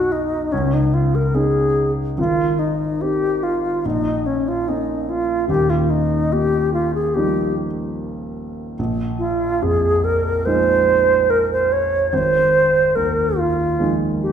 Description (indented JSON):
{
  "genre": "classical, impressionist duo for alto flute and grand piano",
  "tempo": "72 BPM",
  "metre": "4/4",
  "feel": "rubato",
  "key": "Bb dorian",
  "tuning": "A4 = 435 Hz",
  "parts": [
    { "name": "alto flute", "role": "melody", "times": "0.0-14.3 s", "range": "Db4 to Db5", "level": "-18 LUFS", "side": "right 1 dB", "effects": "none" },
    { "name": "dark concert grand piano", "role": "accompaniment", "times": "0.0-14.3 s", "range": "Eb1 to D#4", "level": "-21 LUFS", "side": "equal", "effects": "none" }
  ],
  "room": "wet recital hall reverb, RT60 1.5 s",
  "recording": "heard from further back in the room",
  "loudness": "-16 LUFS",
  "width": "side -8 dB against mid",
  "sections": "0.0-14.3 A section",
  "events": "none",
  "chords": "0.0 B; 0.5 Dbsus2; 2.2 Ab; 3.8 Bbm; 5.5 Ebadd9; 8.8 Bb9sus4; 12.1 Ab69",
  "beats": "0.52 1.35 | 2.18 3.00 3.85 4.67 | 5.49 6.32 7.14 7.97 | 8.78 9.62 10.45 11.29 | 12.12 12.95 13.79"
}